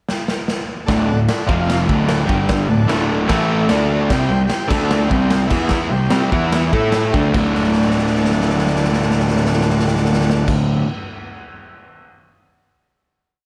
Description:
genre	garage rock duo or trio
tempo	148 BPM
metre	4/4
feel	straight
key	D mixolydian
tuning	A4 = 438 Hz
part	raw garage drum kit	drums	0.1-12.0 s	crash cymbal, kick drum, snare drum	-23 LUFS	equal	none
part	combo organ	sustained chords	0.9-10.5 s	E4 to A5	-28 LUFS	equal	none
part	crunchy overdriven guitar	riff	0.9-10.9 s	D2 to A4	-19 LUFS	equal	none
part	fuzz picked electric bass	bass	0.9-10.5 s	D1 to A2	-27 LUFS	equal	overdrive
room	wet small room reverb, RT60 0.5 s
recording	none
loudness	-17 LUFS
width	mono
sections	0.0-0.9 pickup bar; 0.9-7.3 riff; 7.3-10.6 final chord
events	drum fill 0.1-0.9, 7.5-10.5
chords	0.0 N.C.; 0.9 D; 1.5 F5; 1.9 D; 2.3 G5; 2.7 D; 3.3 A5; 3.7 D; 4.1 C5; 4.7 D5; 5.1 C5; 5.5 E5; 5.9 C5; 6.3 E5; 6.7 A5; 7.1 C5; 7.3 D

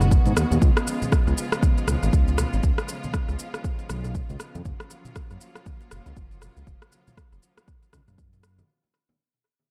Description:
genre	afro house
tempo	119 BPM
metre	4/4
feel	swing 59% on 16ths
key	unclear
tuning	A4 = 441 Hz
part	clear symphonic string section	sustained chords	0.0-8.6 s	C#3 to F#4	-35 LUFS	equal	sidechain pumping
part	smooth synth bass	bass	0.0-8.6 s	F#1 to G#2	-26 LUFS	equal	tube saturation, sidechain pumping
part	electronic shaker and rim click	drums	0.0-8.7 s	none	-32 LUFS	equal	studio reverb, analog delay
part	congas	percussion	0.0-8.7 s	none	-36 LUFS	equal	none
part	electronic kick drum	drums	0.1-8.3 s	none	-24 LUFS	equal	studio reverb
room	digital ambience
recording	echo-heavy mix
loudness	-23 LUFS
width	mono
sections	0.0-8.7 A section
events	fade-out 0.0-8.7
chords	0.0 G#m7; 0.6 C#7; 4.7 F#maj7

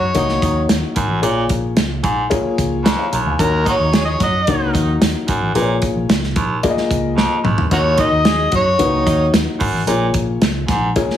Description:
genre	uptempo 1960s-style soul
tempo	111 BPM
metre	4/4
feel	straight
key	Eb minor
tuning	A4 = 440 Hz
part	overdriven harmonica	melody	0.0-9.3 s	Gb4 to Eb5	-18 LUFS	equal	slapback echo, plate reverb
part	vibraphone with medium mallets	second line	0.0-9.3 s	Bb4 to Eb5	-26 LUFS	right 2 dB	none
part	warm horn section	second line	0.0-9.3 s	Eb3 to Ab4	-26 LUFS	right 2 dB	plate reverb
part	vintage muted fingered electric bass	bass	0.0-11.1 s	Ab1 to Gb2	-22 LUFS	equal	none
part	dark upright piano	accompaniment	0.1-11.2 s	Bb3 to Bb5	-20 LUFS	left 4 dB	plate reverb
part	natural country drum kit	drums	0.1-11.2 s	hi-hat, kick drum, snare drum, toms	-19 LUFS	right 1 dB	none
part	raspy baritone saxophone	riff	1.0-10.9 s	Eb2 to Bb2	-21 LUFS	right 2 dB	none
room	moderate studio reverb, RT60 0.8 s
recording	heavily compressed radio sound, small room ambience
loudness	-14 LUFS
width	side -10 dB against mid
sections	0.0-11.2 A section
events	drum fill 7.2-7.7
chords	0.0 Ebm7; 1.2 Bbm7; 3.4 Ebm7; 5.6 Bbm7; 7.7 Ebm7; 9.9 Bbm7

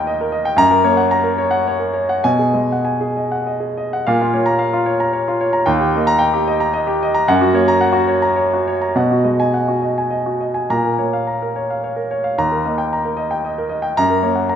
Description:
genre	neoclassical minimalist piano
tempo	99-116 BPM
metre	3/4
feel	rubato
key	Bb phrygian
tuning	A4 = 440 Hz
part	warm grand piano	solo	0.0-14.6 s	Eb2 to Bb5	-15 LUFS	equal	none
room	wet recital hall reverb, RT60 1.6 s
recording	minimal, uncompressed stereo recording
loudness	-15 LUFS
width	side -8 dB against mid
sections	0.0-4.0 A section; 4.0-14.6 B section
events	none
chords	0.0 Eb; 0.6 Gb; 2.2 B6; 4.0 Bbm; 5.7 Eb; 7.3 Gb; 8.9 B6; 10.7 Bbm; 12.4 Eb; 14.0 Gb

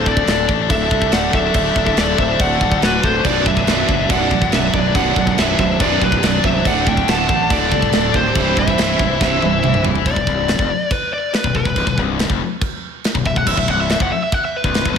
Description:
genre	heavy metal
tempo	141 BPM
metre	4/4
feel	straight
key	B phrygian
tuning	A4 = 440 Hz
part	high-gain lead guitar	melody	0.0-15.0 s	B4 to A5	-20 LUFS	equal	distortion, slapback echo, ping-pong delay
part	bluesy overdriven lead guitar	second line	0.0-9.8 s	F#4 to F#5	-25 LUFS	right 3 dB	distortion, slapback echo
part	heavy high-gain guitar	riff	0.0-15.0 s	B1 to E4	-22 LUFS	left 12 dB	distortion, slapback echo
part	fuzz fingered electric bass	bass	0.0-15.0 s	B0 to C2	-22 LUFS	equal	overdrive
part	tight metal drum kit	drums	0.1-15.0 s	china cymbal, crash cymbal, kick drum, snare drum, toms	-20 LUFS	equal	none
part	heavy high-gain guitar	riff	3.3-10.0 s	B1 to D3	-20 LUFS	right 10 dB	distortion, slapback echo
room	moderate lush hall reverb, RT60 1.6 s, small room ambience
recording	big arena sound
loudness	-14 LUFS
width	side -7 dB against mid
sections	0.0-10.1 A section; 10.1-15.0 B section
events	drum fill 9.2-10.1; lead electric guitar solo 10.1-15.0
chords	0.0 D; 3.3 Bm; 6.7 D; 8.4 C; 10.1 Bm

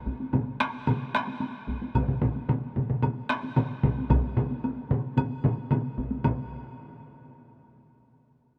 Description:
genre	japanese traditional, taiko drum ensemble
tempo	112 BPM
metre	4/4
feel	straight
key	none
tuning	none
part	taiko ensemble	percussion	0.1-6.5 s	none	-36 LUFS	equal	none
part	taiko ensemble	percussion	0.1-6.5 s	none	-34 LUFS	equal	none
part	solo taiko drums	percussion	0.3-6.7 s	none	-32 LUFS	equal	none
part	taiko ensemble	percussion	0.3-6.7 s	none	-33 LUFS	equal	none
part	woodblock	percussion	0.3-6.5 s	none	-43 LUFS	equal	none
room	moderate huge ambient reverb, RT60 4.3 s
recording	none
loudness	-28 LUFS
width	mono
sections	0.0-6.2 A section; 6.2-8.4 B section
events	none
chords	none

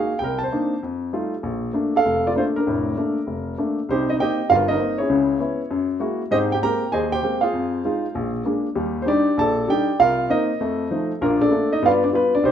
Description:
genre	jazz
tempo	196 BPM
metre	4/4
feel	swing 63% on 8ths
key	Bb major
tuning	A4 = 440 Hz
part	warm baby grand piano	solo	0.0-12.5 s	F1 to Bb5	-19 LUFS	equal	none
room	wet large studio reverb, RT60 0.8 s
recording	minimal, uncompressed stereo recording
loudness	-19 LUFS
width	side -9 dB against mid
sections	0.0-3.9 A section; 3.9-12.5 B section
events	none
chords	0.2 Cm9; 0.8 F9; 1.4 Bbmaj7; 3.9 Cm7; 5.1 Dbm7; 5.7 Gb9; 6.3 Abmaj9; 7.5 Fm7; 8.2 Bb7; 8.8 Ebmaj7; 10.0 Cm7; 10.6 F7; 11.2 Bbmaj7; 11.8 G7

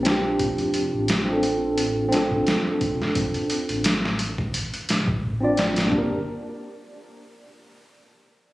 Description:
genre	trip hop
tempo	87 BPM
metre	4/4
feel	swing 55% on 16ths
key	G minor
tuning	A4 = 440 Hz
part	mellow tine electric piano	accompaniment	0.0-6.2 s	Bb3 to D5	-23 LUFS	equal	medium stereo tremolo, low-pass filter, tape echo
part	dark detuned saw bass	bass	0.0-6.2 s	D1 to Bb1	-31 LUFS	equal	none
part	trip hop sampler-style drum kit	drums	0.1-6.1 s	hi-hat, kick drum, snare drum	-25 LUFS	equal	none
room	light reverb, digital ambience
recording	recorded on a phone in the room, studio reverb, compression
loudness	-21 LUFS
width	side -17 dB against mid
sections	0.0-5.9 A section; 5.9-8.5 B section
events	none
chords	0.4 F6; 5.9 Gm

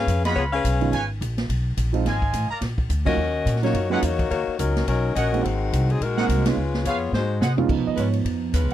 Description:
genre	jazz, big band swing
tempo	213 BPM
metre	4/4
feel	swing 59% on 8ths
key	Db mixolydian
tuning	A4 = 438 Hz
part	warm saxophone section	melody	0.0-1.1, 3.1-7.4 s	Eb3 to F5	-24 LUFS	left 5 dB	none
part	upright bass	bass	0.0-8.7 s	Ab1 to Db3	-24 LUFS	equal	none
part	swinging big-band drum kit	drums	0.1-8.7 s	crash cymbal, hi-hat, kick drum, ride cymbal, snare drum, toms	-29 LUFS	equal	none
part	mellow trumpet section	stabs	0.2-7.5 s	Ab4 to Cb6	-27 LUFS	right 2 dB	none
part	warm grand piano	accompaniment	0.8-8.7 s	Eb3 to Eb5	-25 LUFS	right 9 dB	none
part	bright saxophone section	sustained chords	8.0-8.7 s	Ab3 to Cb5	-31 LUFS	left 2 dB	none
room	little or no reverb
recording	dry, close 1970s-style studio recording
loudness	-20 LUFS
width	side -12 dB against mid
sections	0.0-7.7 A section; 7.7-8.7 B section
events	band accent 3.0, 6.4; drum fill 7.1-7.7; grand piano solo 7.7-8.7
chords	0.0 Db7; 2.1 Fm7; 2.6 Bb; 3.2 Ebm7; 5.4 Ab7; 6.6 Db7; 7.1 Ab7; 7.7 Db7

